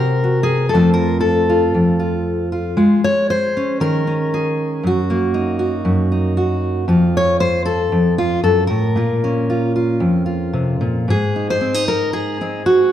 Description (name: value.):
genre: folk, solo fingerstyle acoustic guitar.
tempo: 116 BPM.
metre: 4/4.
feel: rubato.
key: unclear.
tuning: A4 = 439 Hz.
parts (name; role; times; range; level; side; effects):
fingerpicked steel-string acoustic guitar; solo; 0.0-12.9 s; F2 to Db5; -15 LUFS; equal; none.
room: moderate recital hall reverb, RT60 1.5 s.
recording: dark, warm production.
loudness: -15 LUFS.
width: side -11 dB against mid.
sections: 0.0-11.1 A section; 11.1-12.9 B section.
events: none.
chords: 0.0 Ab9/C; 0.7 F; 2.8 Absus4; 4.9 Ebm/Gb; 6.9 F; 9.0 Bbm; 11.1 Ab.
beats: 0.21 | 0.71 1.22 1.73 2.26 | 2.79 3.31 3.83 4.34 | 4.86 5.37 5.87 6.38 | 6.89 7.40 7.91 8.43 | 8.95 9.47 9.99 10.53 | 11.07 11.60 12.12 12.64.